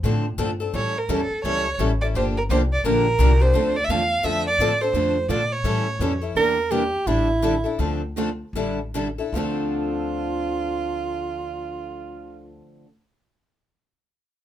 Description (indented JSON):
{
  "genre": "acoustic string swing (jazz manouche)",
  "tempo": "145-171 BPM",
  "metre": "4/4",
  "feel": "swing 61% on 8ths",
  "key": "D minor",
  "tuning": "A4 = 439 Hz",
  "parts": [
    { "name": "picked steel-string acoustic guitar", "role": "accompaniment", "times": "0.0-12.9 s", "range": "D3 to A4", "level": "-27 LUFS", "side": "left 6 dB", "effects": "none" },
    { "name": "upright bass", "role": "bass", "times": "0.0-12.6 s", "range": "G1 to Bb2", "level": "-25 LUFS", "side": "left 1 dB", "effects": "none" },
    { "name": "picked steel-string acoustic guitar", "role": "accompaniment", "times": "0.1-12.9 s", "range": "D3 to Bb4", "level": "-30 LUFS", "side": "right 6 dB", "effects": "none" },
    { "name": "warm violin", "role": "melody", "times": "0.8-6.2 s", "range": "A4 to F5", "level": "-23 LUFS", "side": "right 2 dB", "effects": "none" },
    { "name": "breathy soprano saxophone", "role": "second line", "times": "6.4-12.6 s", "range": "E4 to Bb4", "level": "-24 LUFS", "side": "right 4 dB", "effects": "none" }
  ],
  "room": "light reverb",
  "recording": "minimal, uncompressed stereo recording",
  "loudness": "-20 LUFS",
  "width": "side -11 dB against mid",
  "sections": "0.0-6.4 A section; 6.4-9.3 B section; 9.3-12.6 C section",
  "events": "slowing down 6.4-9.3",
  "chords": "0.0 Dm7; 0.7 A7; 2.1 Gm7; 3.5 Dm7; 5.7 A7; 6.4 Em7b5; 7.1 A7sus4; 7.8 Dm7; 8.5 A7sus4; 9.3 Dm7"
}